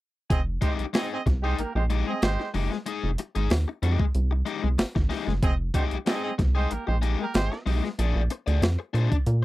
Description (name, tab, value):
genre	funk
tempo	94 BPM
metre	4/4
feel	straight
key	F dorian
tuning	A4 = 440 Hz
part	clear horn section	second line	0.3-7.6 s	Ab3 to Eb5	-30 LUFS	right 4 dB	none
part	rubbery square bass	bass	0.3-9.4 s	F1 to Bb2	-24 LUFS	equal	none
part	breakbeat sampler-style drum kit	drums	0.3-9.4 s	hi-hat, kick drum, snare drum	-26 LUFS	equal	none
part	biting overdriven guitar	accompaniment	0.6-9.4 s	Ab3 to D5	-31 LUFS	left 8 dB	none
part	tambourine	percussion	1.0-8.8 s	none	-44 LUFS	left 3 dB	none
room	little or no reverb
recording	dry, close 1970s-style studio recording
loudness	-23 LUFS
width	side -17 dB against mid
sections	0.3-9.4 A section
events	none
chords	0.3 Fm9 (rootless); 8.0 Bb9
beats	| 0.31 0.95 1.59 2.23 | 2.87 3.51 4.15 4.79 | 5.43 6.07 6.71 7.35 | 7.99 8.63 9.27